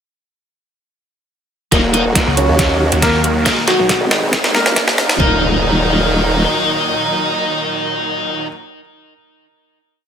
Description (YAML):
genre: heavy wobble dubstep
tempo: 138 BPM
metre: 4/4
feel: half-time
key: Eb minor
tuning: A4 = 439 Hz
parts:
  - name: felt-muted upright piano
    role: melody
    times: 1.7-8.5 s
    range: Gb3 to Db5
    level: -20 LUFS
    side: equal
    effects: low-pass filter, tape echo
  - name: supersaw chords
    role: sustained chords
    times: 1.7-8.5 s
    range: Bb2 to Gb4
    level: -21 LUFS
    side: right 1 dB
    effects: sidechain pumping
  - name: high-gain distorted guitar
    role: stabs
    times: 1.7-8.5 s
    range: Ab3 to Eb5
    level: -18 LUFS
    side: equal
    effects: distortion, tape echo
  - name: formant-sweep wobble bass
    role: bass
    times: 1.7-6.5 s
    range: Eb1 to Eb2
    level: -17 LUFS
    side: equal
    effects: chorus, overdrive
  - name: dubstep drum kit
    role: drums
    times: 1.7-5.2 s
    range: hi-hat, snare drum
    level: -16 LUFS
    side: equal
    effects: high-pass filter on snare, high-pass filter on hats, high-pass filter on room
  - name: electronic kick drum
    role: drums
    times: 1.7-5.3 s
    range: none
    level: -18 LUFS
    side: equal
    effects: overdrive
  - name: riser and impact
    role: sound effects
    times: 3.8-8.5 s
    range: none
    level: -25 LUFS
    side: right 1 dB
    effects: none
  - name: snarling distorted saw bass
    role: bass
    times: 2.3-4.0 s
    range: Cb2 to Eb2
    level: -18 LUFS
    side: equal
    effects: distortion, overdrive
room: light reverb, digital ambience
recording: high-pass filter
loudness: -12 LUFS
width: side -8 dB against mid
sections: 1.7-5.2 build; 5.2-8.7 final chord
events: build-up 1.7-5.2; drum fill 1.7-5.2; filter sweep on felt piano 1.7-5.2; filter sweep 1.7-5.2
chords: 1.7 Ebm; 3.5 Abm; 5.2 Ebm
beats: | 1.72 2.16 2.59 3.02 | 3.46 3.90 4.33 4.76 | 5.20 5.63 6.07 6.50 | 6.94 7.37 7.81 8.24